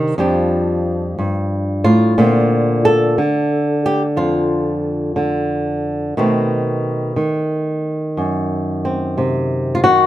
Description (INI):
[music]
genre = solo jazz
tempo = 60 BPM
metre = 4/4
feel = swing 67% on 8ths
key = unclear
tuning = A4 = 440 Hz
[part]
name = flamenco guitar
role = solo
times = 0.0-10.1 s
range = F2 to A4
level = -15 LUFS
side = equal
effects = none
[sound]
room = light reverb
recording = none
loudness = -15 LUFS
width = side -13 dB against mid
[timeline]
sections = 0.0-10.1 A section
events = none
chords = 0.2 F69; 2.2 Bbmaj9; 6.2 B7b9